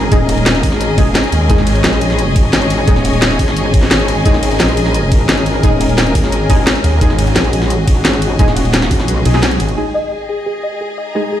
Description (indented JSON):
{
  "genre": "dark technical drum and bass",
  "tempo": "174 BPM",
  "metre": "4/4",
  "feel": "straight",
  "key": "unclear",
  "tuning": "A4 = 439 Hz",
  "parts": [
    { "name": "sweeping resonant pad", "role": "sustained chords", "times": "0.0-11.4 s", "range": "G#3 to C#5", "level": "-20 LUFS", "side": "equal", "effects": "chorus, sidechain pumping" },
    { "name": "metallic wobble bass", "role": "bass", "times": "0.0-9.2 s", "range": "D#1 to B1", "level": "-16 LUFS", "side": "equal", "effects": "chorus" },
    { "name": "clear studio string section", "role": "texture", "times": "0.0-11.4 s", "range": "G#4 to A#5", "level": "-22 LUFS", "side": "left 4 dB", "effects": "sidechain pumping" },
    { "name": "orchestra-hit-like synth stab", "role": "stabs", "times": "0.1-11.2 s", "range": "G#3 to G#4", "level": "-21 LUFS", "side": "equal", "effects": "built-in reverb, tape echo" },
    { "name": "drum and bass drum kit", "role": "drums", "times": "0.1-9.8 s", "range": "hi-hat, ride cymbal, snare drum", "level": "-17 LUFS", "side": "equal", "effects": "none" },
    { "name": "electronic kick drum", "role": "drums", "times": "0.1-9.0 s", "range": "none", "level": "-13 LUFS", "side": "equal", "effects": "none" },
    { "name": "phased detuned saw bass", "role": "bass", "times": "1.3-1.8, 4.3-4.6, 6.8-9.8 s", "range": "G#1 to D#2", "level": "-14 LUFS", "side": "equal", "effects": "phaser, tube saturation, sidechain pumping" },
    { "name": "soft round pluck", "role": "arpeggios", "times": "9.8-11.4 s", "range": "G#4 to D#5", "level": "-19 LUFS", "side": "left 1 dB", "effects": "ensemble chorus, sidechain pumping, tape echo" }
  ],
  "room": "light reverb",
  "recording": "played on a big sound system in a bare room, large studio reverb",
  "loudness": "-11 LUFS",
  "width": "side -11 dB against mid",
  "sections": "0.0-9.8 A section; 9.8-11.4 B section",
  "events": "drop 0.0-9.8; kick drops out 9.1-9.8; band accent 9.4; filter sweep on analog synth pad 9.8-11.4; filter sweep on synth pluck 9.8-11.4",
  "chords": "0.0 G#sus2"
}